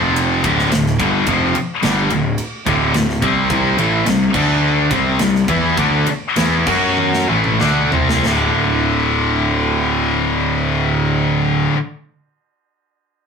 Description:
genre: hard rock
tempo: 91-108 BPM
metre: 4/4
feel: straight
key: unclear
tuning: A4 = 440 Hz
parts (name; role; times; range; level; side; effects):
- crunchy overdriven guitar; riff; 0.0-11.8 s; D2 to F#4; -22 LUFS; right 5 dB; phaser
- high-gain distorted guitar; riff; 0.0-11.8 s; D2 to F#4; -18 LUFS; left 5 dB; distortion
- high-gain distorted guitar; riff; 0.0-11.8 s; D2 to F#4; -22 LUFS; right 1 dB; distortion
- fuzz picked electric bass; bass; 0.0-11.7 s; D1 to F#2; -20 LUFS; equal; overdrive
- tight metal drum kit; drums; 0.2-8.4 s; crash cymbal, kick drum, ride cymbal, snare drum, splash cymbal, toms; -22 LUFS; equal; none
room: moderate studio reverb, RT60 0.5 s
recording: rough rehearsal-room recording, tube saturation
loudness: -14 LUFS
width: side -6 dB against mid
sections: 0.0-8.2 A section; 8.2-10.9 B section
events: slowing down 3.5-8.2; drum fill 7.0-8.2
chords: 0.4 D5; 3.5 C5; 4.3 D5; 4.9 C5; 6.7 F#5; 7.3 C5; 8.2 D5

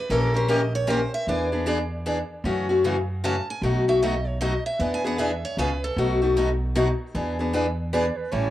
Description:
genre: acoustic string swing (jazz manouche)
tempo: 153 BPM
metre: 3/4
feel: swing 63% on 8ths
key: E mixolydian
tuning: A4 = 444 Hz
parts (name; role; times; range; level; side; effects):
- picked steel-string acoustic guitar; melody; 0.0-6.2 s; A4 to A5; -30 LUFS; right 3 dB; none
- picked steel-string acoustic guitar; accompaniment; 0.1-8.5 s; B2 to A#4; -24 LUFS; left 2 dB; cassette tape
- upright bass; bass; 0.1-8.5 s; A1 to F#2; -27 LUFS; right 1 dB; none
- dark clarinet; second line; 7.9-8.5 s; B4 to D5; -27 LUFS; right 6 dB; cassette tape
room: light reverb, small room ambience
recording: home recording on cassette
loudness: -22 LUFS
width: side -13 dB against mid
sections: 0.0-7.1 A section; 7.1-8.5 A section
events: steel-string acoustic guitar solo 0.0-7.1; clarinet solo 7.1-8.5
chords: 0.1 A#dim7; 1.3 E7; 2.4 F#m7; 3.6 B7; 4.8 E7; 5.6 C#7; 6.0 B7; 7.1 E7

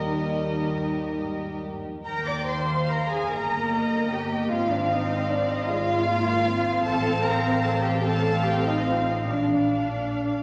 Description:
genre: classical, slow romantic movement for symphony orchestra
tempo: 50 BPM (dotted quarters)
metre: 6/8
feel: uneven beats, rubato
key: Eb major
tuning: A4 = 435 Hz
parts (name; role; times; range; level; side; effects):
- warm chamber violin section; melody; 0.0-10.4 s; Eb5 to G5; -34 LUFS; equal; none
- dark studio violin section; second line; 0.0-10.4 s; G4 to D6; -33 LUFS; equal; none
- dark symphonic viola section; accompaniment; 0.0-10.4 s; Eb3 to Eb4; -31 LUFS; equal; none
- warm French horn section; sustained chords; 0.0-1.7 s; G3 to Eb4; -34 LUFS; equal; none
- dark chamber cello section; bass; 0.0-10.4 s; Eb2 to D5; -31 LUFS; equal; none
- rich symphonic double bass section; bass; 0.0-10.4 s; G1 to Eb2; -32 LUFS; equal; none
room: wet concert hall reverb, RT60 1.8 s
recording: none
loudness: -25 LUFS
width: mono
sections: 0.0-2.1 A section; 2.1-10.4 A section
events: none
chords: 0.0 Eb; 3.3 Eb/G; 4.5 Fm/Ab; 6.9 F7/A; 9.3 Bb

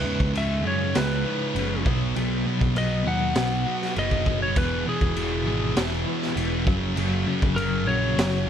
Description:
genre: quiet-loud alternative rock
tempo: 100 BPM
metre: 4/4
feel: straight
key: unclear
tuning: A4 = 440 Hz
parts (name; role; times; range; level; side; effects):
- lightly driven lead guitar; melody; 0.0-8.5 s; G#4 to F#5; -28 LUFS; left 1 dB; slapback echo
- twelve-string electric guitar; arpeggios; 0.0-8.5 s; C#2 to B4; -30 LUFS; left 2 dB; tremolo
- thick fuzz guitar; riff; 0.0-8.5 s; C#2 to B3; -27 LUFS; right 1 dB; distortion
- picked electric bass; bass; 0.0-8.5 s; E1 to F#2; -28 LUFS; equal; none
- raw garage drum kit; drums; 0.2-8.3 s; crash cymbal, kick drum, snare drum; -28 LUFS; equal; none
room: light reverb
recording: none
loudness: -22 LUFS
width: side -9 dB against mid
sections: 0.0-8.5 A section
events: lead electric guitar solo 0.0-8.5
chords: 0.0 C#m7; 1.9 B; 4.6 E; 6.7 F#

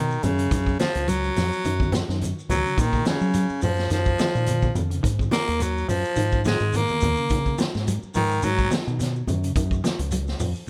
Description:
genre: afrobeat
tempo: 106 BPM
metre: 4/4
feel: swing 54% on 16ths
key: G# dorian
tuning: A4 = 441 Hz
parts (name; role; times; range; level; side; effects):
- raspy baritone saxophone; melody; 0.0-8.7 s; C#3 to A#3; -27 LUFS; equal; none
- clean electric guitar; arpeggios; 0.0-10.6 s; C#3 to F#3; -34 LUFS; equal; tremolo, tape echo
- deep dub fingered electric bass; bass; 0.0-10.5 s; C#2 to F#3; -28 LUFS; equal; none
- shekere; percussion; 0.1-10.7 s; none; -38 LUFS; equal; none
- vintage drum kit; drums; 0.2-10.5 s; hi-hat, kick drum, snare drum; -30 LUFS; equal; none
- congas; percussion; 0.2-10.6 s; none; -32 LUFS; equal; none
room: light reverb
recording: none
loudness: -23 LUFS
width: mono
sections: 0.0-10.7 A section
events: baritone saxophone solo 0.0-10.7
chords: 0.0 G#m7 (rootless); 0.5 F#maj7; 5.0 G#7sus2; 9.6 F#maj7(no3)

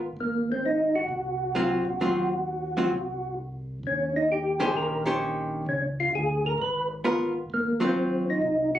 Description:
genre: jazz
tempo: 131 BPM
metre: 4/4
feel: swing 67% on 8ths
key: Ab mixolydian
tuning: A4 = 441 Hz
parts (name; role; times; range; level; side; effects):
- mellow tonewheel organ; bass; 0.0-8.8 s; Ab1 to Eb2; -35 LUFS; equal; overdrive, stopped rotary speaker
- percussive tonewheel organ; melody; 0.2-8.8 s; Bb3 to Cb5; -26 LUFS; equal; slow rotary speaker
- archtop guitar, miked and amplified; accompaniment; 1.6-8.4 s; Eb3 to C5; -26 LUFS; equal; none
room: moderate club reverb, RT60 0.5 s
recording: recorded on a phone in the room, club reverb, compression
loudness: -24 LUFS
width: side -12 dB against mid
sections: 0.0-8.8 A section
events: none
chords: 0.2 Ab13; 3.8 Eb6; 5.7 Db6; 7.5 Ab13

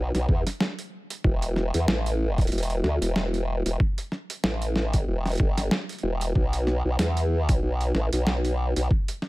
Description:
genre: glitch hop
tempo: 94 BPM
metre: 4/4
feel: swing 56% on 16ths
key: unclear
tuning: A4 = 440 Hz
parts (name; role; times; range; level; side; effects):
- formant-sweep wobble bass; bass; 0.0-8.9 s; E1 to E2; -24 LUFS; equal; chorus, overdrive
- boom bap sampler-style drum kit; drums; 0.1-9.3 s; hi-hat, snare drum; -29 LUFS; equal; overdrive
- electronic kick drum; drums; 0.3-9.0 s; none; -23 LUFS; equal; overdrive
room: little or no reverb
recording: none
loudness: -23 LUFS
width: side -20 dB against mid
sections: 0.0-9.3 A section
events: none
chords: none

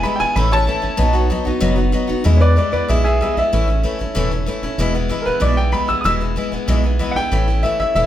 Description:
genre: rockabilly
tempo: 190 BPM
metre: 4/4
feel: straight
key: E major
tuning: A4 = 440 Hz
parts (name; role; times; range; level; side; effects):
- warm upright piano; melody; 0.0-8.1 s; G#4 to E6; -19 LUFS; equal; none
- picked steel-string acoustic guitar; accompaniment; 0.0-8.1 s; E2 to F#4; -21 LUFS; left 2 dB; none
- rubbery square bass; bass; 0.0-8.1 s; E1 to E2; -18 LUFS; right 1 dB; none
room: moderate large studio reverb, RT60 0.9 s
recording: band playing live in one room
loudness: -15 LUFS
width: side -12 dB against mid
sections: 0.0-2.3 A section; 2.3-8.1 B section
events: upright piano solo 0.0-2.3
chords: 0.4 A; 1.0 B; 2.3 E; 3.5 A; 4.8 E; 7.3 A

